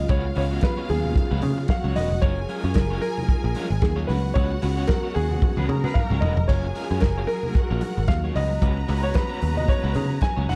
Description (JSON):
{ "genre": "disco", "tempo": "113 BPM", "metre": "4/4", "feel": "swing 56% on 16ths", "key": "unclear", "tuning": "A4 = 438 Hz", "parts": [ { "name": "dark baby grand piano", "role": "melody", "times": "0.0-10.6 s", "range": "G#4 to G#5", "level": "-32 LUFS", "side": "equal", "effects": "none" }, { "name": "clear studio string section", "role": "second line", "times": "0.0-10.6 s", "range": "E#4 to A#5", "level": "-36 LUFS", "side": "equal", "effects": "tape echo" }, { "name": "warm studio string section", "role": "sustained chords", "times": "0.0-10.6 s", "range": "C#3 to A#4", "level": "-38 LUFS", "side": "equal", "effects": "none" }, { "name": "picked electric bass", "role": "bass", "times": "0.0-10.6 s", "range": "E1 to C#3", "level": "-26 LUFS", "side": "equal", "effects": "none" }, { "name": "electric guitar at the edge of break-up", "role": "accompaniment", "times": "0.1-10.6 s", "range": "G#3 to C#5", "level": "-38 LUFS", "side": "equal", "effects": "tremolo" }, { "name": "warm soul drum kit", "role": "drums", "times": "0.1-10.6 s", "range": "hi-hat, kick drum, snare drum, splash cymbal, toms", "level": "-25 LUFS", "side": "equal", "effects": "none" }, { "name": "congas", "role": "percussion", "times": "0.6-10.6 s", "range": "none", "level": "-36 LUFS", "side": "equal", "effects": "none" }, { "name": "mellow horn section", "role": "stabs", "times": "5.6-6.2 s", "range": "F#4 to B4", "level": "-36 LUFS", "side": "equal", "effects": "none" } ], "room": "studio reverb", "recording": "dark, warm production", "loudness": "-23 LUFS", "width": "mono", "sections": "0.0-10.6 A section", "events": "band accent 4.4-6.5; drum fill 5.4-6.5", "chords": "0.0 C#7sus4; 2.2 F#maj9; 4.1 C#7sus4; 6.5 F#maj9; 8.4 C#7sus4", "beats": "| 0.10 0.63 1.16 1.69 | 2.23 2.76 3.29 3.83 | 4.36 4.89 5.42 5.96 | 6.49 7.02 7.56 8.09 | 8.62 9.16 9.69 10.22" }